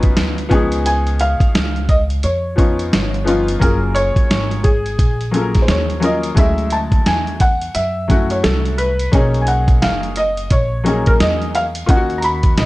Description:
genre	hip hop, jazz-hop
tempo	87 BPM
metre	4/4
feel	swing 61% on 16ths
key	unclear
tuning	A4 = 440 Hz
part	felt-muted upright piano	melody	0.0-12.7 s	G#4 to B5	-20 LUFS	equal	none
part	clear upright piano	accompaniment	0.0-12.7 s	E#3 to A#4	-20 LUFS	left 2 dB	none
part	upright bass	bass	0.0-12.7 s	F#1 to F#2	-20 LUFS	equal	none
part	dusty soul sampler-style drum kit	drums	0.0-12.7 s	hi-hat, kick drum, snare drum	-16 LUFS	equal	vintage 12-bit sampler grit
room	little or no reverb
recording	dark, warm production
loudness	-14 LUFS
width	side -19 dB against mid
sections	0.0-6.4 A section; 6.4-12.7 B section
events	none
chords	0.0 Badd9; 0.5 C#9; 3.6 F#maj9; 6.4 Dmaj9#11; 9.1 Bmaj13; 11.9 D#m7

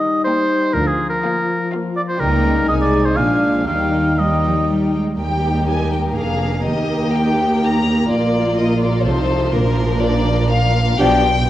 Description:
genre	quick classical-period movement for symphony orchestra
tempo	124 BPM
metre	3/4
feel	rubato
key	Eb major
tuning	A4 = 440 Hz
part	warm chamber violin section	melody	0.0-11.5 s	Bb4 to Bb5	-23 LUFS	left 3 dB	none
part	warm chamber violin section	second line	0.0-11.2 s	D4 to D5	-24 LUFS	left 1 dB	none
part	warm oboe	second line	0.0-4.7 s	Ab4 to F5	-20 LUFS	right 1 dB	none
part	dark chamber viola section	accompaniment	0.0-11.2 s	F3 to F4	-22 LUFS	right 1 dB	none
part	dark French horn section	sustained chords	0.0-4.9 s	F3 to F4	-21 LUFS	left 3 dB	none
part	warm chamber cello section	bass	0.8-11.4 s	Eb2 to Ab3	-22 LUFS	right 2 dB	none
part	warm chamber double bass section	bass	0.8-11.4 s	F1 to Eb2	-22 LUFS	right 1 dB	none
room	moderate concert hall reverb, RT60 2.0 s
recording	worn, warbling old tape, cassette tape, warbly pitch drift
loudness	-15 LUFS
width	side -13 dB against mid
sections	0.0-5.2 A section; 5.2-11.5 B section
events	none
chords	0.0 Eb; 0.8 Bb/D; 2.2 Eb7/Db; 2.7 Ab/C; 3.2 Bb7; 3.7 Eb; 6.2 Bb7/F; 6.7 Eb; 8.1 Bb; 9.1 F7/C; 9.5 Bb; 11.0 G7/B

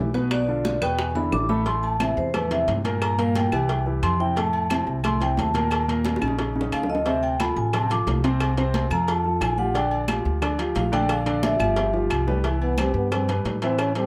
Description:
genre	Afro-Cuban jazz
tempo	178 BPM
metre	4/4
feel	straight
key	A minor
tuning	A4 = 441 Hz
part	warm grand piano	accompaniment	0.0-14.1 s	A2 to E5	-29 LUFS	equal	none
part	upright bass	bass	0.0-14.1 s	G1 to A2	-29 LUFS	equal	none
part	bongos and cowbell	percussion	0.1-14.1 s	none	-35 LUFS	equal	none
part	congas	percussion	0.1-14.1 s	none	-35 LUFS	equal	none
part	timbales and agogo bells	percussion	0.1-14.0 s	none	-34 LUFS	equal	none
part	vibraphone with medium mallets	melody	0.3-11.9 s	B4 to D6	-28 LUFS	equal	plate reverb
part	claves	percussion	0.3-14.0 s	none	-36 LUFS	equal	none
part	breathy trombone	second line	12.6-14.1 s	B3 to Db4	-28 LUFS	equal	none
room	light reverb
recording	none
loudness	-23 LUFS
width	mono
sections	0.0-1.7 A section; 1.7-12.4 A section; 12.4-14.1 A section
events	vibraphone solo 0.0-12.4; drum fill 1.2-1.7, 6.0-7.1, 11.8-12.4; trombone solo 12.4-14.1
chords	0.3 Bdim; 1.0 E5; 1.7 Am7; 3.0 Gm; 3.7 C; 4.4 Fmaj7; 5.7 D#5; 7.1 Dm7; 8.4 Fadd11/C; 9.1 Gm9; 9.8 Bb6; 11.1 Bb; 11.8 G7; 12.4 Cmaj7

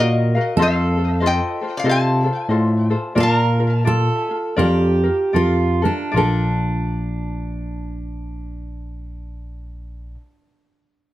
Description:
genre	Hawaiian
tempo	72-96 BPM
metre	4/4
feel	swing 62% on 8ths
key	Bb major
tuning	A4 = 440 Hz
part	lap resonator guitar	melody	0.0-5.3 s	Bb4 to Bb5	-23 LUFS	left 2 dB	tape echo
part	fingerpicked steel-string acoustic guitar	second line	0.0-10.2 s	D4 to Bb4	-23 LUFS	right 3 dB	none
part	ukulele	accompaniment	0.0-10.2 s	F4 to F5	-24 LUFS	left 3 dB	none
part	barky tine electric piano	bass	0.0-10.1 s	Bb1 to C3	-20 LUFS	equal	none
room	moderate studio ambience, RT60 0.5 s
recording	none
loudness	-16 LUFS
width	side -15 dB against mid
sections	0.0-6.1 A section; 6.1-9.5 B section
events	slowing down 0.6-6.1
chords	0.0 Ebmadd9; 0.6 F7; 3.2 Bbmaj7

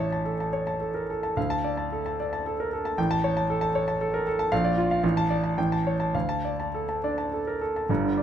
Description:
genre	classical, virtuoso piano study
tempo	101-118 BPM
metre	3/4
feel	rubato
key	D minor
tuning	A4 = 440 Hz
part	warm concert grand piano	solo	0.0-8.2 s	G1 to A5	-24 LUFS	right 1 dB	none
room	moderate stone room reverb, RT60 1.2 s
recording	none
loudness	-24 LUFS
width	side -9 dB against mid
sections	0.0-7.9 A section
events	none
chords	0.0 A; 1.4 Dm; 3.0 A7; 4.5 Bb; 5.0 Dm/A; 5.6 A7; 6.1 Dm

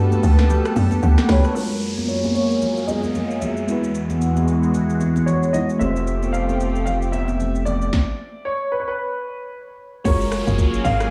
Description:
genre	amapiano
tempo	113 BPM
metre	4/4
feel	swing 58% on 16ths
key	unclear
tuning	A4 = 438 Hz
part	FM electric piano with soft pad layer	accompaniment	0.0-11.1 s	G#3 to A5	-26 LUFS	equal	chorus, phaser, low-pass filter
part	lush unison pad	sustained chords	0.0-11.1 s	E2 to A4	-26 LUFS	equal	chorus, phaser, low-pass filter
part	woody log drum bass	bass	0.0-1.4, 10.1-11.1 s	F#1 to G2	-20 LUFS	equal	none
part	deep house drum kit	drums	0.1-11.1 s	hi-hat, kick drum, rim click, shaker, snare drum	-28 LUFS	equal	overdrive
part	congas	percussion	0.1-7.8 s	none	-30 LUFS	equal	none
part	warm concert grand piano	melody	1.0-11.1 s	G4 to F5	-29 LUFS	equal	lush chorus, low-pass filter, analog delay
part	downlifter	sound effects	1.6-5.8, 10.1-11.1 s	none	-37 LUFS	equal	none
part	warm sub bass	bass	5.8-7.9 s	F1	-26 LUFS	equal	none
room	moderate plate reverb, RT60 1.1 s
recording	dreamy mix soaked in reverb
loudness	-20 LUFS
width	mono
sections	0.0-1.6 A section; 1.6-10.1 B section; 10.1-11.1 A section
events	break 0.0-1.6; drop 0.0-1.6, 10.1-11.1; FM electric piano fill 0.0-1.6; filter sweep 1.6-10.1; stop 7.9-10.1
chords	0.0 Gmaj9; 1.6 F#maj9; 3.7 Emaj9; 5.8 Fmaj9; 7.9 N.C.; 10.1 F#maj9

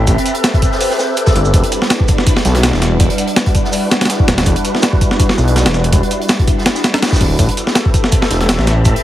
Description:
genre	drum and bass, jungle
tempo	164 BPM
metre	4/4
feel	swing 54% on 16ths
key	unclear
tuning	A4 = 444 Hz
part	soft string machine	sustained chords	0.0-9.0 s	G3 to E5	-18 LUFS	equal	phaser, ensemble chorus
part	detuned saw bass	bass	0.0-8.9 s	D1 to B1	-14 LUFS	equal	none
part	breakbeat sampler-style drum kit	drums	0.1-8.9 s	hi-hat, kick drum, snare drum	-13 LUFS	equal	none
part	vintage drum kit	drums	0.1-9.0 s	hi-hat, shaker, snare drum	-24 LUFS	right 1 dB	high-pass filter on hats, high-pass filter on snare, high-pass filter on perc, high-pass filter on room
room	light reverb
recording	heavily compressed radio sound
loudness	-11 LUFS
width	side -13 dB against mid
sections	0.0-9.0 A section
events	none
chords	0.0 Am7; 1.5 Em7; 7.4 Am7

